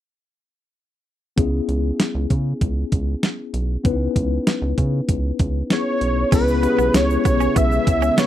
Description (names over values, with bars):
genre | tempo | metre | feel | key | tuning
1980s-style pop | 97 BPM | 4/4 | straight | C# minor | A4 = 439 Hz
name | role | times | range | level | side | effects
mellow tine electric piano | accompaniment | 1.4-8.3 s | B3 to B4 | -23 LUFS | left 5 dB | medium stereo tremolo
rubbery square bass | bass | 1.4-8.1 s | B1 to C#3 | -22 LUFS | right 1 dB | none
clean 12-bit digital drum machine | drums | 1.4-8.3 s | crash cymbal, hi-hat, kick drum, snare drum | -20 LUFS | right 1 dB | none
wide unison lead | melody | 5.7-8.3 s | B4 to E5 | -21 LUFS | right 1 dB | tape echo
sweeping resonant pad | sustained chords | 6.3-8.3 s | C#3 to E4 | -27 LUFS | right 2 dB | chorus
direct-recorded clean electric guitar | riff | 6.3-8.3 s | B3 to C#4 | -28 LUFS | right 10 dB | wide subtle chorus, tape echo
egg shaker | percussion | 6.3-8.3 s | none | -42 LUFS | right 24 dB | none
room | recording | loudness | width
light reverb | dry, close 1970s-style studio recording | -17 LUFS | side -12 dB against mid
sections
1.4-6.3 A section; 6.3-8.3 B section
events
none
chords
1.4 C#m7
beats
| 1.38 1.99 2.61 3.23 | 3.85 4.47 5.09 5.71 | 6.32 6.94 7.56 8.18